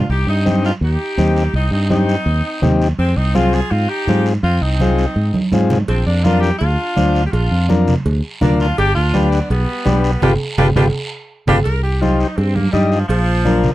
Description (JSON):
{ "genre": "latin, cumbia", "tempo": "166 BPM", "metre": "4/4", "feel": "straight", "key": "C minor", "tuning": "A4 = 441 Hz", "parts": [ { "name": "edgy saxophone section", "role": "melody", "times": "0.0-13.7 s", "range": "F3 to Bb4", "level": "-21 LUFS", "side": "equal", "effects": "none" }, { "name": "fingered electric bass", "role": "bass", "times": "0.0-13.7 s", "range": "G1 to Ab2", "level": "-16 LUFS", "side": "equal", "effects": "none" }, { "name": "guiro", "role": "percussion", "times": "0.1-13.7 s", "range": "none", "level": "-33 LUFS", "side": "right 3 dB", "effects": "none" }, { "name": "combo organ", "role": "accompaniment", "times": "0.5-13.7 s", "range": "C4 to Eb5", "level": "-18 LUFS", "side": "left 5 dB", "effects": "none" }, { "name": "congas", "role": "percussion", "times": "0.5-13.7 s", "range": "none", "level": "-20 LUFS", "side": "right 2 dB", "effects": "none" }, { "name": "cowbell and timbales", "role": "percussion", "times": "5.9-13.3 s", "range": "none", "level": "-25 LUFS", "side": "right 4 dB", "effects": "none" } ], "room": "light reverb", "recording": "dry, close 1970s-style studio recording", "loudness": "-14 LUFS", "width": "side -15 dB against mid", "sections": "0.1-11.7 A section; 11.7-13.7 B section", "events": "drum fill 5.3-5.9, 10.2-11.7; band accent 10.2-11.7; saxophone section solo 11.7-13.7", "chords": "0.1 Cm; 3.0 Fm; 5.9 Bb; 8.8 G7; 11.7 Cm; 13.1 Bb" }